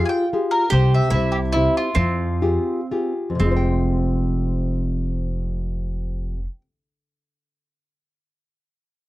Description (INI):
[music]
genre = italian folk, Italian serenade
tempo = 113-151 BPM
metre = 3/4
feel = swing 54% on 8ths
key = F harmonic minor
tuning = A4 = 437 Hz
[part]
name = bowl-back mandolin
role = melody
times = 0.0-2.9 s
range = E4 to Ab5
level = -24 LUFS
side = equal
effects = none
[part]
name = mandolin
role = second line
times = 0.0-6.4 s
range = C4 to G4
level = -27 LUFS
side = right 4 dB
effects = none
[part]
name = nylon-string guitar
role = accompaniment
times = 0.0-6.6 s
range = F2 to G5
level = -23 LUFS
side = left 2 dB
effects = none
[part]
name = upright bass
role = bass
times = 0.7-6.4 s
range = F1 to F2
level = -22 LUFS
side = equal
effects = none
[sound]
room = light reverb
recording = dry, close 1970s-style studio recording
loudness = -19 LUFS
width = side -17 dB against mid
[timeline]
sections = 0.0-3.4 A section; 3.4-6.6 B section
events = slowing down 0.7-3.4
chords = 0.0 Fmadd9; 0.7 C5; 1.1 C; 2.0 Fmadd9